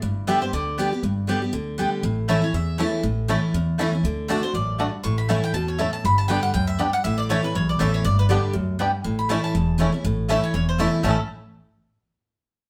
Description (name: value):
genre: bluegrass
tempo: 240 BPM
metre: 4/4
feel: swing 56% on 8ths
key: A mixolydian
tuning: A4 = 440 Hz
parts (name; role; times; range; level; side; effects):
- picked steel-string acoustic guitar; accompaniment; 0.0-11.2 s; E2 to G4; -26 LUFS; equal; none
- upright bass; bass; 0.0-11.2 s; E1 to E2; -28 LUFS; equal; none
- mandolin; melody; 0.3-11.2 s; B4 to C#6; -30 LUFS; equal; none
- mandolin; stabs; 0.3-11.2 s; A3 to A5; -30 LUFS; equal; none
- bluegrass banjo; melody; 2.3-11.2 s; A3 to A4; -31 LUFS; equal; slapback echo
room: moderate studio reverb, RT60 0.8 s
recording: band playing live in one room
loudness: -23 LUFS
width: mono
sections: 0.0-10.0 A section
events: none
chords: 0.0 G; 2.0 A; 4.0 D; 5.0 A; 6.0 G; 7.0 A; 8.0 G; 9.0 A